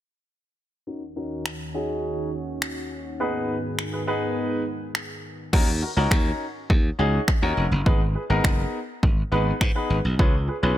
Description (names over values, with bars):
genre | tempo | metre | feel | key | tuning
dance-pop | 103 BPM | 4/4 | straight | Eb minor | A4 = 440 Hz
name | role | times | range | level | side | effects
clear baby grand piano | accompaniment | 0.9-10.8 s | Cb4 to Cb5 | -27 LUFS | left 1 dB | sidechain pumping, low-pass filter
sweeping resonant pad | sustained chords | 0.9-5.5 s | Eb2 to Ab4 | -32 LUFS | right 1 dB | chorus, phaser, sidechain pumping, low-pass filter
punchy analog drum machine | drums | 1.5-10.3 s | crash cymbal, finger snaps, kick drum | -22 LUFS | equal | overdrive
glassy slap bass | bass | 5.5-10.7 s | F1 to Ab2 | -23 LUFS | equal | sidechain pumping
room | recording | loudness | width
little or no reverb | none | -22 LUFS | side -13 dB against mid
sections
0.9-5.5 A section; 5.5-10.8 B section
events
filter sweep 0.9-5.5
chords
0.9 Ebm7; 3.2 Abm; 5.5 Ebm7; 7.9 Abm; 10.2 Db7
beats
| 0.87 1.45 2.04 2.62 | 3.20 3.78 4.37 4.95 | 5.53 6.12 6.70 7.28 | 7.86 8.45 9.03 9.61 | 10.19 10.78